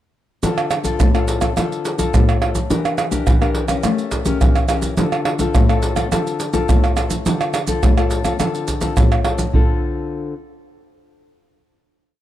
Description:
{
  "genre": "samba and choro",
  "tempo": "105 BPM",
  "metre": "4/4",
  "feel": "straight",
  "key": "D minor",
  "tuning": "A4 = 440 Hz",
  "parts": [
    { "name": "nylon-string guitar", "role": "accompaniment", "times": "0.4-10.3 s", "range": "A2 to Bb4", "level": "-21 LUFS", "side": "left 5 dB", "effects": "none" },
    { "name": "maracas, surdo, pandeiro and tamborim", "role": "percussion", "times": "0.4-9.7 s", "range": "none", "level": "-17 LUFS", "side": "right 1 dB", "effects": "none" }
  ],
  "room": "small room ambience",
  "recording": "dry, close 1970s-style studio recording",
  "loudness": "-16 LUFS",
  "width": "side -13 dB against mid",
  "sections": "0.4-9.5 A section; 9.5-11.8 final chord",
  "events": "none",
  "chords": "0.4 Dm7; 2.7 Em7b5; 3.8 A7b9; 5.0 Dm7"
}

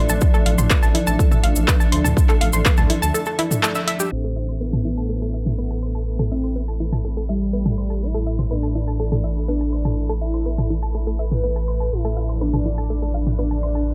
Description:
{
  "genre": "melodic techno",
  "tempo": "123 BPM",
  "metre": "4/4",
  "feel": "straight",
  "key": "unclear",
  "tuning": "A4 = 440 Hz",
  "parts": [
    { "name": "dark analog pad", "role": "sustained chords", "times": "0.0-13.9 s", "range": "F3 to D5", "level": "-33 LUFS", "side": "equal", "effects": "chorus, sidechain pumping" },
    { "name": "analog pluck", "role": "arpeggios", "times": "0.0-13.8 s", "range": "E4 to C6", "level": "-30 LUFS", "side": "equal", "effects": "chorus, sidechain pumping, tape echo" },
    { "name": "dark detuned saw bass", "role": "bass", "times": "0.0-13.9 s", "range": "A1 to D2", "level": "-25 LUFS", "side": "equal", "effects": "tube saturation, sidechain pumping" },
    { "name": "granular cloud pad", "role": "texture", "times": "0.0-13.9 s", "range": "D4 to B5", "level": "-35 LUFS", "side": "equal", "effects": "built-in reverb, sidechain pumping" },
    { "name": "cabasa", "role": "percussion", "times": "0.1-4.1 s", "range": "none", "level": "-32 LUFS", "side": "equal", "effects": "none" },
    { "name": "electronic kick drum", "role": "drums", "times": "0.2-2.8 s", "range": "none", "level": "-19 LUFS", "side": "equal", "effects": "none" },
    { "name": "punchy analog drum machine", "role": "drums", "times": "0.5-13.4 s", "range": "handclaps, hi-hat, toms", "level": "-25 LUFS", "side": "equal", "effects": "overdrive, sidechain pumping on hats, sidechain pumping on toms" },
    { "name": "unison lead", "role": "melody", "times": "4.1-13.9 s", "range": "G3 to B4", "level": "-30 LUFS", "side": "equal", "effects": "subtle chorus, sidechain pumping, dub echo" }
  ],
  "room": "light reverb",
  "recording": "low-pass filter",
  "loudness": "-21 LUFS",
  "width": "mono",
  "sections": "0.0-4.1 A section; 4.1-13.9 B section",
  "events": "break 3.1-4.1; band accent 3.6; filter sweep on synth arpeggio sound 4.1-13.9; filter sweep 4.1-13.9",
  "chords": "0.0 Dmadd9; 4.1 Am; 11.9 Dmadd9/A"
}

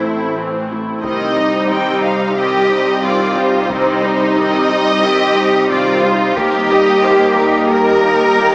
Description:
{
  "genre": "cinematic, hybrid orchestral and electronic film score",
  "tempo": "90 BPM",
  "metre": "4/4",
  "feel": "straight",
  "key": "unclear",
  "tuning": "A4 = 440 Hz",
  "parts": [
    { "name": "warm symphonic violin section", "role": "second line", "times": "0.0-8.5 s", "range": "G4 to G5", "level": "-20 LUFS", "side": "equal", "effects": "none" },
    { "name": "rich symphonic viola section", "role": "accompaniment", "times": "0.0-8.5 s", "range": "Eb3 to E4", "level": "-20 LUFS", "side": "equal", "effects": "none" },
    { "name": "airy breathy pad", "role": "sustained chords", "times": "0.0-8.5 s", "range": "G3 to Eb5", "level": "-19 LUFS", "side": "equal", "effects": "chorus" },
    { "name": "mellow French horn section", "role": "sustained chords", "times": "0.0-8.5 s", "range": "Bb3 to A4", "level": "-18 LUFS", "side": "equal", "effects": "none" },
    { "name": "clear symphonic double bass section", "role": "bass", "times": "0.0-8.5 s", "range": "A1 to Eb2", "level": "-26 LUFS", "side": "equal", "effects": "none" },
    { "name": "rich symphonic cello section", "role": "bass", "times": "0.0-8.5 s", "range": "Eb4 to Bb4", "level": "-16 LUFS", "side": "equal", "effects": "none" },
    { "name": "solo taiko drums", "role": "drums", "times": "1.0-7.0 s", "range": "none", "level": "-33 LUFS", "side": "equal", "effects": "none" }
  ],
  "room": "moderate scoring stage reverb, RT60 1.5 s",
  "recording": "small speaker sound",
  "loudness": "-11 LUFS",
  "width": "side -31 dB against mid",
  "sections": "0.0-8.5 A section",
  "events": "none",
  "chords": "0.0 Am; 1.0 Cm; 6.4 Eb"
}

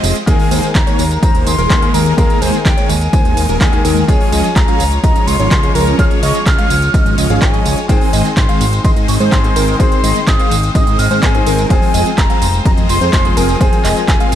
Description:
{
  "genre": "EDM, festival progressive house",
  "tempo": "126 BPM",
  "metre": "4/4",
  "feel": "straight",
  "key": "Ab major",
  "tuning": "A4 = 444 Hz",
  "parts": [
    { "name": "clear symphonic string section", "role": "sustained chords", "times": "0.0-14.4 s", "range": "Ab3 to Db5", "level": "-26 LUFS", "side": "left 1 dB", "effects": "sidechain pumping" },
    { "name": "plucky unison lead", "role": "arpeggios", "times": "0.0-14.4 s", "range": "Bb4 to F5", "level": "-23 LUFS", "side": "right 1 dB", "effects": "sidechain pumping, ping-pong delay" },
    { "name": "big supersaw lead", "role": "riff", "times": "0.0-14.4 s", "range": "Eb3 to F5", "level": "-19 LUFS", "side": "equal", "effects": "phaser, sidechain pumping" },
    { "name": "fat analog bass", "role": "bass", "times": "0.0-14.4 s", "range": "Eb1 to Ab2", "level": "-17 LUFS", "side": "equal", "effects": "sidechain pumping" },
    { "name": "big-room dance drum kit", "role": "drums", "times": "0.0-14.4 s", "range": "handclaps, hi-hat, ride cymbal, tambourine", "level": "-22 LUFS", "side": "right 2 dB", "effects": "overdrive" },
    { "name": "breathy mellow silver concert flute", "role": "melody", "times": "0.3-14.4 s", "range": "G5 to F6", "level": "-20 LUFS", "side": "left 1 dB", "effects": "ping-pong delay" },
    { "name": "clear baby grand piano", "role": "accompaniment", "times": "0.3-14.4 s", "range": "Eb3 to Ab4", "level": "-22 LUFS", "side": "left 3 dB", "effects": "sidechain pumping" },
    { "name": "electronic kick drum", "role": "drums", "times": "0.3-14.2 s", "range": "none", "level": "-14 LUFS", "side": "equal", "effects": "overdrive" }
  ],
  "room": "light reverb, digital ambience",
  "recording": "dark, warm production",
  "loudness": "-10 LUFS",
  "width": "side -10 dB against mid",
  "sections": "0.0-14.4 A section",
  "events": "break 0.0",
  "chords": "0.3 Ebsus4; 4.1 Db; 7.9 Ab; 11.7 Fm"
}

